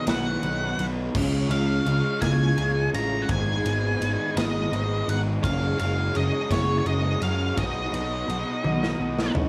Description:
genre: indie rock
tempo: 56 BPM (dotted quarters)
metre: 6/8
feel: straight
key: Db mixolydian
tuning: A4 = 440 Hz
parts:
  - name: octave-fuzz lead guitar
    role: melody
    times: 0.0-9.3 s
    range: Db5 to Bb5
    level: -32 LUFS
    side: equal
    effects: distortion, slapback echo
  - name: warm analog pad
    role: sustained chords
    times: 0.0-9.5 s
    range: Gb4 to Db6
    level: -42 LUFS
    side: equal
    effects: none
  - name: raw garage guitar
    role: riff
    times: 0.0-9.5 s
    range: Ab2 to Cb5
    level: -33 LUFS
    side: equal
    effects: overdrive
  - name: twelve-string electric guitar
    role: riff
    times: 0.0-9.5 s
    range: Ab2 to Gb4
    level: -34 LUFS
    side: equal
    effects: analog chorus, slapback echo
  - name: fuzz picked electric bass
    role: bass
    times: 0.1-9.5 s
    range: Gb1 to Gb2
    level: -29 LUFS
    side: equal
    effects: overdrive
  - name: big rock drum kit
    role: drums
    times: 0.1-9.5 s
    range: crash cymbal, kick drum, ride cymbal, snare drum, toms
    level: -33 LUFS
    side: equal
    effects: none
room: little or no reverb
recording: small room ambience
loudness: -25 LUFS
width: mono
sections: 0.0-9.5 A section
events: drum fill 8.6-9.5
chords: 0.0 Cb; 1.1 Db; 3.3 Abm; 5.4 Gbsus2; 7.6 Cb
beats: 0.08 | 1.15 2.22 | 3.29 4.36 | 5.43 6.50 | 7.57 8.64

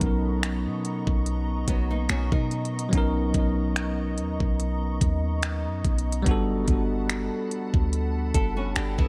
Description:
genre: contemporary R&B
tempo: 72 BPM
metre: 4/4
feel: swing 54% on 16ths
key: B major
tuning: A4 = 440 Hz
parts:
  - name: bell-like tine electric piano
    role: accompaniment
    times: 0.0-9.1 s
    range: F#3 to A#4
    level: -31 LUFS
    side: equal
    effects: tape echo
  - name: glassy FM pad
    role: sustained chords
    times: 0.0-9.1 s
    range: B3 to C#6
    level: -38 LUFS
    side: equal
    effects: ensemble chorus, built-in reverb, sidechain pumping
  - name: clean 808-style bass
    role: bass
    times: 0.0-9.1 s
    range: F#1 to B2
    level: -30 LUFS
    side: equal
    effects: none
  - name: trap drum kit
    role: drums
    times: 0.0-9.1 s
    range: finger snaps, hi-hat, kick drum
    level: -28 LUFS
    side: equal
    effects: overdrive, vintage 12-bit sampler grit
  - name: flamenco guitar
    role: arpeggios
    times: 1.7-9.1 s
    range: F#3 to A#4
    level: -35 LUFS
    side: equal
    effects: tape echo
room: light reverb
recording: echo-heavy mix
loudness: -26 LUFS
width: mono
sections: 0.0-9.1 A section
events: none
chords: 0.0 Bmaj9; 6.3 Gmaj9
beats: 0.43 1.26 2.10 | 2.93 3.76 4.60 5.43 | 6.26 7.10 7.93 8.76

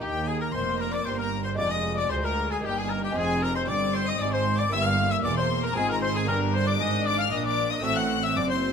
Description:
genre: classical, baroque-style concerto movement with solo episodes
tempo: 115 BPM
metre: 3/4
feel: straight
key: Eb major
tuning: A4 = 440 Hz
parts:
  - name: clear oboe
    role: melody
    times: 0.0-8.7 s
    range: G4 to F#5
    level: -30 LUFS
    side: left 2 dB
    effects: none
  - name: warm chamber violin section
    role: melody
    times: 0.0-8.7 s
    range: G5 to F#6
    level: -31 LUFS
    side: left 5 dB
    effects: none
  - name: rich chamber violin section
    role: second line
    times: 0.0-8.7 s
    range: G4 to F#5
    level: -31 LUFS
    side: left 6 dB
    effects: none
  - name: dark chamber viola section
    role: accompaniment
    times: 0.0-8.7 s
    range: Ab3 to D4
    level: -33 LUFS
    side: right 2 dB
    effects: none
  - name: lute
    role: accompaniment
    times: 0.0-8.7 s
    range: D2 to G4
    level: -36 LUFS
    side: equal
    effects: none
  - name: rich chamber cello section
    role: bass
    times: 0.0-8.7 s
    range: D2 to Bb2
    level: -32 LUFS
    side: right 4 dB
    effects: none
  - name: rich chamber double bass section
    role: bass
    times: 0.0-8.7 s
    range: E1 to Eb2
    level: -31 LUFS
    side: right 2 dB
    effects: none
room: light reverb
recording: close, detailed microphones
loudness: -23 LUFS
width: side -6 dB against mid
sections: 0.0-8.7 A section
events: none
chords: 0.0 Eb; 1.6 Ddim/F; 2.6 Eb/G; 3.2 Fm; 4.7 Edim/G; 5.8 Fm/Ab; 6.3 Gm; 7.8 F#dim/A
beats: | 0.02 0.55 1.07 | 1.59 2.11 2.64 | 3.16 3.68 4.20 | 4.72 5.25 5.76 | 6.28 6.80 7.32 | 7.84 8.36

